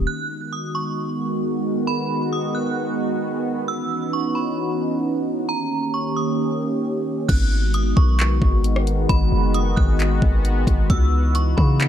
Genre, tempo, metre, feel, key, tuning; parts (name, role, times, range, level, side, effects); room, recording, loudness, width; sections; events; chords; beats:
hip hop, atmospheric cloud-rap; 133 BPM; 4/4; half-time; G# minor; A4 = 439 Hz
sweeping resonant pad; sustained chords; 0.0-11.9 s; D#3 to G4; -23 LUFS; equal; chorus, sidechain pumping
warm 808-style bass; bass; 0.0-0.1, 7.3-11.9 s; F#1 to C#3; -19 LUFS; equal
metallic FM bell; melody; 0.1-11.9 s; A#5 to F#6; -28 LUFS; right 3 dB; chorus, phaser, low-pass filter, digital delay
smooth R&B drum kit; drums; 7.3-11.9 s; crash cymbal, handclaps, hi-hat, kick drum, rim click; -20 LUFS; equal
digital ambience; dark, warm production; -18 LUFS; side -10 dB against mid
0.1-7.3 A section; 7.3-11.9 B section
0.1 G#m7; 3.7 C#m11; 5.5 D#7; 7.3 G#m7; 10.9 C#m11
| 0.07 0.52 0.97 1.43 | 1.88 2.33 2.78 3.23 | 3.68 4.13 4.58 5.04 | 5.49 5.94 6.39 6.84 | 7.29 7.74 8.19 8.64 | 9.10 9.55 10.00 10.45 | 10.90 11.35 11.80